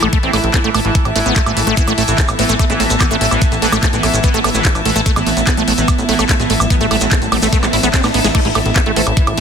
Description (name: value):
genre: psychedelic trance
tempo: 146 BPM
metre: 4/4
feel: straight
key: unclear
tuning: A4 = 440 Hz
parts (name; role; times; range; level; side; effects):
- pulsing gated texture; sustained chords; 0.0-9.4 s; E3 to E4; -20 LUFS; right 1 dB; chorus, built-in reverb, vintage 12-bit sampler grit, sidechain pumping
- liquid acid bass; riff; 0.0-9.4 s; G#3 to E4; -19 LUFS; right 1 dB; chorus, auto-pan, sidechain pumping, dub echo
- plucky analog bass; bass; 0.0-9.4 s; A1 to A2; -19 LUFS; equal; none
- drum and bass drum kit; drums; 0.0-9.4 s; crash cymbal, handclaps, hi-hat, snare drum, woodblock; -20 LUFS; right 1 dB; soft clipping on snare
- rich chamber string section; texture; 0.0-9.4 s; A3 to A5; -22 LUFS; left 2 dB; sidechain pumping
- electronic kick drum; drums; 0.1-9.3 s; none; -15 LUFS; equal; none
- shekere; percussion; 1.8-8.3 s; none; -24 LUFS; right 4 dB; none
- resonant blip pluck; second line; 2.4-4.1, 9.0-9.1 s; G#3 to C4; -28 LUFS; left 4 dB; none
- riser; sound effects; 6.5-8.3 s; none; -25 LUFS; right 2 dB; none
room: light reverb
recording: dense, heavily limited modern master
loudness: -12 LUFS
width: side -7 dB against mid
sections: 0.0-8.3 A section; 8.3-9.4 B section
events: riser 6.5-8.3; drum fill 7.9-8.3; drop 8.3-9.4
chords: 0.0 A5